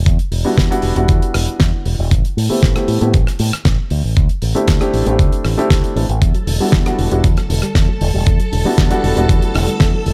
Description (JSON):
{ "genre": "nu-disco, nu disco", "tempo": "117 BPM", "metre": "4/4", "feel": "straight", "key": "E minor", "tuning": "A4 = 440 Hz", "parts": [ { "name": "fingered electric bass with an envelope filter", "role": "bass", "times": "0.0-10.1 s", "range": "E1 to A2", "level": "-20 LUFS", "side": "equal", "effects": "tube saturation" }, { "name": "damped 70s drum kit", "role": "drums", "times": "0.1-10.1 s", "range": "hi-hat, rim click, snare drum", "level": "-24 LUFS", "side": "equal", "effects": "small room ambience" }, { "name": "electronic kick drum", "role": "drums", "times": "0.1-9.9 s", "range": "none", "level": "-17 LUFS", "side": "equal", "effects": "overdrive, small room ambience" }, { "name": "dark baby grand piano", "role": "accompaniment", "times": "0.4-10.1 s", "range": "G3 to A4", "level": "-21 LUFS", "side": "equal", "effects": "sidechain pumping, digital delay" }, { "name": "string machine, full ensemble", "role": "sustained chords", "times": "6.2-10.1 s", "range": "A4 to A5", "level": "-27 LUFS", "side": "equal", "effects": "ensemble chorus, sidechain pumping" }, { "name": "soft round pluck", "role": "arpeggios", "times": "6.2-10.1 s", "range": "D3 to G3", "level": "-27 LUFS", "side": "equal", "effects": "chorus, sidechain pumping, digital delay" } ], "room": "small room ambience", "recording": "none", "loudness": "-15 LUFS", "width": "mono", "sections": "0.0-10.1 A section", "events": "none", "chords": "0.0 Em9; 2.1 Am7; 3.9 D7sus4; 6.2 Em9" }